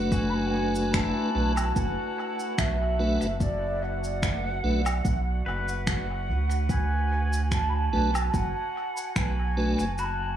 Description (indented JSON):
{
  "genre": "ambient dub",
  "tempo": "73 BPM",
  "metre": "4/4",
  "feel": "swing 54% on 16ths",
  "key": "B dorian",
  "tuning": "A4 = 440 Hz",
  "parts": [
    { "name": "mellow wooden flute", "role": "melody", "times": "0.0-10.4 s", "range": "D5 to B5", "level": "-31 LUFS", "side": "right 1 dB", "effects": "dub echo" },
    { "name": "tonewheel organ", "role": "stabs", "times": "0.0-9.8 s", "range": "A3 to B4", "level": "-30 LUFS", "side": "equal", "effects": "chorus vibrato, dub echo" },
    { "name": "soft dub sub bass", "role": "bass", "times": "0.0-10.4 s", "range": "F#1 to D2", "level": "-28 LUFS", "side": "right 1 dB", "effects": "tube saturation" },
    { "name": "drifting glass-harmonics texture", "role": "texture", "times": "0.0-10.4 s", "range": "F#4", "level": "-38 LUFS", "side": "equal", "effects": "chorus, built-in reverb" },
    { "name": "pedal steel guitar", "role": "arpeggios", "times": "0.1-10.4 s", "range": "E4 to B4", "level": "-40 LUFS", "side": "left 3 dB", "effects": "dub echo" },
    { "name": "electronic kick drum", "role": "drums", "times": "0.1-9.3 s", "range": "none", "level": "-28 LUFS", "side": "equal", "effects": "none" },
    { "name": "electronic shaker, finger snaps and woodblock", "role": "drums", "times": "0.1-10.2 s", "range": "none", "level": "-36 LUFS", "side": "equal", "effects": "dub echo" }
  ],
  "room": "light reverb",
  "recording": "small room ambience",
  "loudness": "-24 LUFS",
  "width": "side -10 dB against mid",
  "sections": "0.0-10.4 A section",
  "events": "break 10.0-10.4",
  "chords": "0.0 Bm7"
}